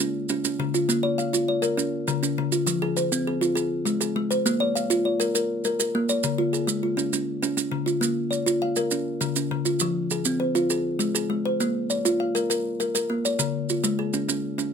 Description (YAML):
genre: southern african traditional, mbira-style interlocking cycle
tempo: 134 BPM (dotted quarters)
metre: 12/8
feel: straight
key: Bb equiheptatonic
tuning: A4 = 440 Hz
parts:
  - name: kalimba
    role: arpeggios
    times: 0.0-14.7 s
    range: Db3+43c to F5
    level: -23 LUFS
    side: left 1 dB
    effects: none
  - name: maracas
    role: percussion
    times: 0.0-14.7 s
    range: none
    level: -28 LUFS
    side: right 8 dB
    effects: none
room: light reverb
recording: close, detailed microphones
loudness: -22 LUFS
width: side -6 dB against mid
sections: 0.0-8.0 A section; 8.0-14.7 B section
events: none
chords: 0.0 Db; 0.9 Bbm; 1.8 Db; 2.7 Fm; 3.6 Ab; 4.5 Bbm; 6.2 Db; 8.0 Bbm; 8.9 Db; 9.8 Fm; 10.7 Ab; 11.6 Bbm; 13.4 Db